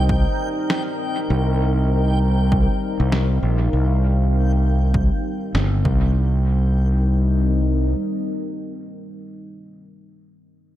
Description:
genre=ambient dub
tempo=99 BPM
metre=4/4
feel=swing 59% on 16ths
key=C minor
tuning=A4 = 439 Hz
part: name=deep dark ambient pad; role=sustained chords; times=0.0-9.3 s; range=G3 to F5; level=-26 LUFS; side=left 1 dB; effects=chorus, built-in reverb
part: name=growling fingered electric bass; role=bass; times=0.0-7.9 s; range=G1 to C2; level=-17 LUFS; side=equal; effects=overdrive
part: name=backwards swelling texture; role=texture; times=0.0-6.2 s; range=G5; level=-33 LUFS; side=left 1 dB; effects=built-in reverb
part: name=electronic kick drum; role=drums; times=0.1-6.0 s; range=none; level=-22 LUFS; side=equal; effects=overdrive
part: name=electronic snare drum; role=drums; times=0.7-5.7 s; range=none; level=-26 LUFS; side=right 1 dB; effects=overdrive, dub echo
room=light reverb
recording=none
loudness=-17 LUFS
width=side -13 dB against mid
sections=0.0-6.2 A section; 6.2-8.6 B section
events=none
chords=0.0 Cm7; 5.8 C5; 6.2 Cm7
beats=0.09 0.70 | 1.30 1.91 2.52 3.12 | 3.73 4.33 4.94 5.55 | 6.15 6.76 7.37 7.97

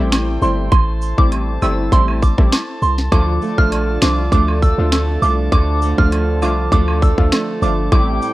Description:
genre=dancehall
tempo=100 BPM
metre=4/4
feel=straight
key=D minor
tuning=A4 = 440 Hz
part: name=synth brass stab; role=accompaniment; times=0.0-8.3 s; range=F3 to F4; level=-22 LUFS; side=left 2 dB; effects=chorus
part: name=warm brass ensemble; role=sustained chords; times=0.0-8.3 s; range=E4 to A5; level=-29 LUFS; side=equal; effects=sidechain pumping
part: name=warm 808-style bass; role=bass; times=0.0-8.2 s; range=G1 to D2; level=-18 LUFS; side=equal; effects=none
part: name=island pop drum kit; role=drums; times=0.1-8.1 s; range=finger snaps, hi-hat, kick drum, rim click, snare drum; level=-15 LUFS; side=equal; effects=none
part: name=woodblock and cabasa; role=percussion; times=0.1-8.3 s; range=none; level=-29 LUFS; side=right 3 dB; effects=none
part: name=soft synth bell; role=melody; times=0.4-8.1 s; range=C6 to F6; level=-22 LUFS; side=right 2 dB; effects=chorus, phaser, digital delay
part: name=flamenco guitar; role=arpeggios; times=3.1-8.3 s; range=A2 to F4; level=-23 LUFS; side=right 4 dB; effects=none
room=little or no reverb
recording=worn, warbling old tape, cassette tape, warbly pitch drift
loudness=-13 LUFS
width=side -17 dB against mid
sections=0.0-8.3 A section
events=none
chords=0.0 Am7; 3.1 Dm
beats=0.12 | 0.72 1.32 1.92 2.52 | 3.12 3.72 4.32 4.92 | 5.52 6.12 6.72 7.32 | 7.92

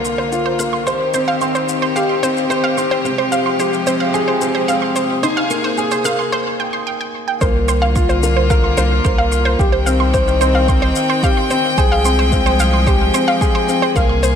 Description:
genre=piano and strings electronica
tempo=110 BPM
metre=4/4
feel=straight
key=unclear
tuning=A4 = 440 Hz
part: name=rich chamber string section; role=sustained chords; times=0.0-14.4 s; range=C2 to G5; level=-21 LUFS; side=left 2 dB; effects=none
part: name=analog pluck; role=arpeggios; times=0.0-14.4 s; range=C5 to C6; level=-20 LUFS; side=right 3 dB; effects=chorus, sidechain pumping, ping-pong delay
part: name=dark grand piano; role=riff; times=0.0-14.1 s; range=Bb3 to C5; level=-19 LUFS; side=left 1 dB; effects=ping-pong delay
part: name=shaker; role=drums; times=0.0-14.3 s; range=none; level=-30 LUFS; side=left 5 dB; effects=none
part: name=round analog bass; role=bass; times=7.4-14.4 s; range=C2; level=-17 LUFS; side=equal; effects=sidechain pumping
part: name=electronic kick drum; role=drums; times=7.4-14.1 s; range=none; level=-17 LUFS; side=equal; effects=none
room=moderate lush hall reverb, RT60 1.9 s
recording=none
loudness=-14 LUFS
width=side -8 dB against mid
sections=0.0-7.4 A section; 7.4-14.4 B section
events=build-up 0.0-7.4; filter sweep on synth arpeggio sound 0.0-7.4; break 6.3-7.4; drop 7.4-14.4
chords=0.0 Bb/C; 0.9 Cm; 3.0 Fmadd9/C; 5.2 Abadd9/C; 7.4 Bb/C; 9.6 Cm; 11.8 Fmadd9/C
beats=0.32 | 0.87 1.41 1.96 2.50 | 3.05 3.60 4.14 4.69 | 5.23 5.78 6.32 6.87 | 7.41 7.96 8.50 9.05 | 9.60 10.14 10.69 11.23 | 11.78 12.32 12.87 13.41 | 13.96

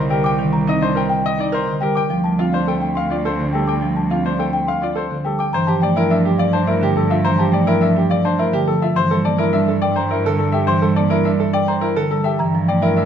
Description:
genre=classical, minimalist pattern music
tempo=105 BPM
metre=3/4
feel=straight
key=G dorian from 5.5 s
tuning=A4 = 441 Hz
part: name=marimba with soft mallets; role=accompaniment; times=0.0-12.9 s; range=D3 to C4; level=-20 LUFS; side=right 1 dB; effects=none
part: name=rich cello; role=bass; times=0.0-13.1 s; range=C2 to G2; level=-23 LUFS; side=right 3 dB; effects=none
part: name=bright baby grand piano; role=melody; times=0.1-13.1 s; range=A4 to G5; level=-22 LUFS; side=left 6 dB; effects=none
part: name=bright grand piano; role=arpeggios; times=0.1-13.1 s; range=D4 to Bb4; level=-24 LUFS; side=right 6 dB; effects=none
part: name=small celesta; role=arpeggios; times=0.1-13.1 s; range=Eb5 to D6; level=-25 LUFS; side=left 2 dB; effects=none
room=wet scoring stage reverb, RT60 1.6 s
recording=none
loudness=-15 LUFS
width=side -8 dB against mid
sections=0.0-5.5 A section; 5.5-13.1 B section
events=none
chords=0.0 Cm7; 2.1 Dm7; 5.5 Gm11; 9.0 C9/G; 12.4 Gm9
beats=| 0.39 0.96 1.53 | 2.10 2.67 3.25 | 3.82 4.39 4.96 | 5.53 6.10 6.67 | 7.25 7.82 8.39 | 8.96 9.53 10.10 | 10.68 11.25 11.82 | 12.39 12.96

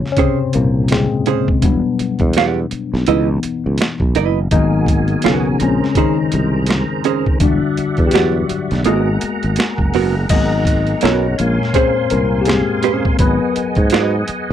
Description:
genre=R&B, neo-soul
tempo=83 BPM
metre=4/4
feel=swing 58% on 16ths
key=G# minor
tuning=A4 = 440 Hz
part: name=barky tine electric piano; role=accompaniment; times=0.0-14.5 s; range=A#2 to D#5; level=-18 LUFS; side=left 5 dB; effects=overdrive, phaser
part: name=boom bap sampler-style drum kit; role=drums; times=0.1-14.5 s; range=crash cymbal, hi-hat, kick drum, snare drum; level=-18 LUFS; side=right 1 dB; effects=none
part: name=vintage hollow-body jazz guitar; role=second line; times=0.2-14.1 s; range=B3 to F#5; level=-17 LUFS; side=right 13 dB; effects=none
part: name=sustaining fretless electric bass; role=bass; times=0.6-14.5 s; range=E1 to G#2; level=-18 LUFS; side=right 1 dB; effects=none
part: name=tonewheel organ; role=sustained chords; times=4.5-14.5 s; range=F#4 to B#5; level=-25 LUFS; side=right 4 dB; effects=slow rotary speaker, chorus vibrato
room=little or no reverb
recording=dry, close 1970s-style studio recording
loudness=-13 LUFS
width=side -10 dB against mid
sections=0.0-10.3 A section; 10.3-14.5 A section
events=tine electric piano solo 0.0-10.3, 10.3-14.5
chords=0.0 A#m9; 1.6 Em9; 3.1 C#m9; 4.5 G#m9; 5.6 A#m9; 7.4 Em9; 8.8 G#m9; 11.4 A#m9; 13.2 G#m7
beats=0.17 0.90 | 1.62 2.34 3.07 3.79 | 4.51 5.24 5.96 6.68 | 7.40 8.13 8.85 9.57 | 10.29 11.02 11.74 12.46 | 13.19 13.91

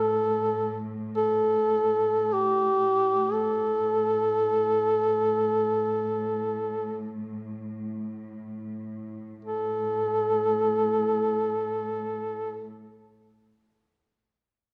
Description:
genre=caucasian folk, Caucasian lament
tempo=free time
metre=none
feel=none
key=unclear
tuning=A4 = 437 Hz
part: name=mellow duduk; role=melody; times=0.0-12.7 s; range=G4 to A4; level=-26 LUFS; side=equal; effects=slapback echo
part: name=warm studio cello section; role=drone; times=0.0-12.7 s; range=A2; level=-38 LUFS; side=equal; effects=none
room=light reverb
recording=none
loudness=-26 LUFS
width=mono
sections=0.0-9.5 A section; 9.5-14.7 B section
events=slowing down 0.0-9.5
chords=none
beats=free time

